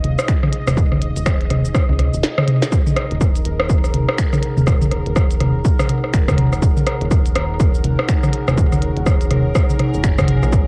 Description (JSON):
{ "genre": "minimal techno", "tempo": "123 BPM", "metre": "4/4", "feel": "swing 60% on 16ths", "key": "Eb minor", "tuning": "A4 = 440 Hz", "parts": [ { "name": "rubbery square bass", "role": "bass", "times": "0.0-10.7 s", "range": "Eb1 to Db2", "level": "-25 LUFS", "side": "equal", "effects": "sidechain pumping" }, { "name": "minimal click drum kit", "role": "drums", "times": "0.0-10.6 s", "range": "finger snaps, hi-hat, shaker, snare drum", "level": "-29 LUFS", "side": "equal", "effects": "cassette tape" }, { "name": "booming analog drum machine", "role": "percussion", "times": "0.0-10.6 s", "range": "rim click, toms", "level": "-21 LUFS", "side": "equal", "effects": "cassette tape" }, { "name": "bubbling stepped-filter texture", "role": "texture", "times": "0.0-10.7 s", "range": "Bb4 to Eb5", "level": "-34 LUFS", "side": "equal", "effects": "chorus, built-in reverb, sidechain pumping, cassette tape" }, { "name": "deep dark ambient pad", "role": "texture", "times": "0.0-10.7 s", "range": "Eb4 to Gb5", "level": "-32 LUFS", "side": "equal", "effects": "chorus, built-in reverb, sidechain pumping, cassette tape" }, { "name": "electronic kick drum", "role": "drums", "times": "0.3-10.6 s", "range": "none", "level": "-20 LUFS", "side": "equal", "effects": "overdrive, cassette tape" } ], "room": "little or no reverb", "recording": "home recording on cassette", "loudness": "-17 LUFS", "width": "mono", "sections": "0.0-2.7 A section; 2.7-10.7 B section", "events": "drum fill 2.2-2.7; drop 2.7-10.7", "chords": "0.0 N.C.; 2.7 Ebm" }